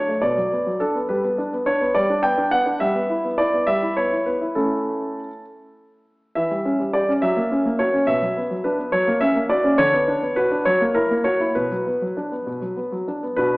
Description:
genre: classical-period piano sonatina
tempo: 69 BPM (dotted quarters)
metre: 6/8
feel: rubato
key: B minor from 6.4 s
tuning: A4 = 440 Hz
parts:
  - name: clear baby grand piano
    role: solo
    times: 0.0-13.6 s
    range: B2 to G5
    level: -19 LUFS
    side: equal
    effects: none
room: wet recital hall reverb, RT60 1.7 s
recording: heard from further back in the room, AM radio sound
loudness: -19 LUFS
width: side -24 dB against mid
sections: 0.0-13.4 A section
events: none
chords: 0.2 Bm; 1.1 G; 2.8 Em/G; 4.6 A; 6.4 C#dim/E; 7.2 F#7; 8.1 Bm; 8.9 F#; 9.8 Bm/D; 10.7 F#7; 11.5 Bm

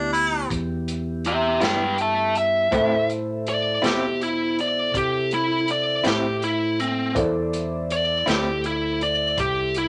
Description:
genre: slow blues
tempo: 54 BPM (dotted quarters)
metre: 12/8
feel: straight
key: unclear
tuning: A4 = 439 Hz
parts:
  - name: clear harmonica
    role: second line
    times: 0.0-0.5 s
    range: D4 to E4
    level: -24 LUFS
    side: equal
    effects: none
  - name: dark upright piano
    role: accompaniment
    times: 0.0-9.9 s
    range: E4 to G5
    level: -31 LUFS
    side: equal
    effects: none
  - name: mellow tonewheel organ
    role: sustained chords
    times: 0.0-9.9 s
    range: B3 to E5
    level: -36 LUFS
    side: equal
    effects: slow rotary speaker
  - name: fingered electric bass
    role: bass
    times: 0.0-9.9 s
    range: C2 to C3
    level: -33 LUFS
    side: equal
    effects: none
  - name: crunchy breakbeat drum kit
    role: drums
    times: 0.1-9.9 s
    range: hi-hat, kick drum, snare drum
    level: -31 LUFS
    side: equal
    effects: none
  - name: biting lead guitar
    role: melody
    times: 1.3-9.9 s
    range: C4 to A5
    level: -24 LUFS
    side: equal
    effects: overdrive
  - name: electric guitar through a small old amp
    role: accompaniment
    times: 1.6-8.5 s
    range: A2 to E4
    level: -28 LUFS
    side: equal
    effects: tremolo
room: light reverb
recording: none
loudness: -23 LUFS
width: mono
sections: 0.0-9.9 A section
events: none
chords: 0.0 Em; 2.7 Am

